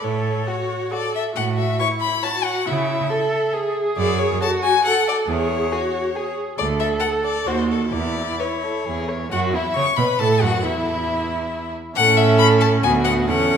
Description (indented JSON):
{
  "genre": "quick classical-period movement for string quartet",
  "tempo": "137 BPM",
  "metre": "3/4",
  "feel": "rubato",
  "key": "A major from 4.0 s",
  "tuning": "A4 = 439 Hz",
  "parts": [
    { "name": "clear violin", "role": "melody", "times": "0.0-13.6 s", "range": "A4 to C#6", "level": "-22 LUFS", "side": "left 6 dB", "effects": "none" },
    { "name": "warm viola", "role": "accompaniment", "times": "0.0-13.6 s", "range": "B3 to C#5", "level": "-24 LUFS", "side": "right 2 dB", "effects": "none" },
    { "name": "rich cello", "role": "bass", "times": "0.0-13.6 s", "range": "D2 to C#3", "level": "-24 LUFS", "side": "right 4 dB", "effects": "none" },
    { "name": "dark violin", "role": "second line", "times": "0.5-13.6 s", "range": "E4 to C#5", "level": "-24 LUFS", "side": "equal", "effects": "none" }
  ],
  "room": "wet recital hall reverb, RT60 1.7 s",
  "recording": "recorded in a church or concert hall",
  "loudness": "-18 LUFS",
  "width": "side -7 dB against mid",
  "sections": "0.0-9.3 A section; 9.3-13.6 B section",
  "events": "none",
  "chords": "0.0 F#m/A; 1.4 A5; 2.7 A/C#; 4.0 F#m; 5.3 C#m/E; 6.6 D5; 7.5 D#dim7; 7.9 A/E; 9.3 A; 10.7 N.C.; 12.0 A; 12.8 Bm/D",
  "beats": "| 0.03 0.47 0.92 | 1.36 1.80 2.24 | 2.67 3.11 3.54 | 3.97 4.41 4.85 | 5.28 5.71 6.15 | 6.58 7.02 7.47 | 7.92 8.39 8.86 | 9.32 9.77 10.21 | 10.65 11.09 11.52 | 11.96 12.39 12.84 | 13.28"
}